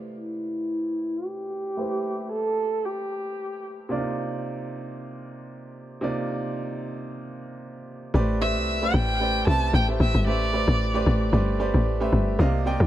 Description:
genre	amapiano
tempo	113 BPM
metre	4/4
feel	swing 55% on 16ths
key	A minor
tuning	A4 = 440 Hz
part	warm grand piano	accompaniment	0.0-12.9 s	C3 to G5	-29 LUFS	right 2 dB	low-pass filter
part	dark viola	melody	0.2-3.6, 8.4-11.0 s	E4 to A5	-27 LUFS	equal	low-pass filter, ping-pong delay
part	tight log drum bass	bass	8.1-12.9 s	G1 to D2	-22 LUFS	equal	none
room	small room ambience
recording	none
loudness	-23 LUFS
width	side -13 dB against mid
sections	0.0-8.1 A section; 8.1-12.9 B section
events	filter sweep 0.0-8.1; drop 8.1-12.9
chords	0.0 Am11; 3.9 Cm11; 8.1 Am11

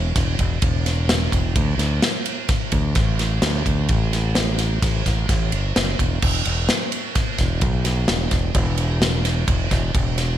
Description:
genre	math rock and midwest emo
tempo	129 BPM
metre	5/4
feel	straight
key	unclear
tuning	A4 = 440 Hz
part	growling fingered electric bass	bass	0.0-10.4 s	E1 to D2	-21 LUFS	equal	overdrive
part	modern studio drum kit	drums	0.2-10.3 s	crash cymbal, kick drum, ride cymbal, snare drum	-20 LUFS	equal	none
room	light reverb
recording	none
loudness	-18 LUFS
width	side -11 dB against mid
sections	0.0-10.4 A section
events	none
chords	none

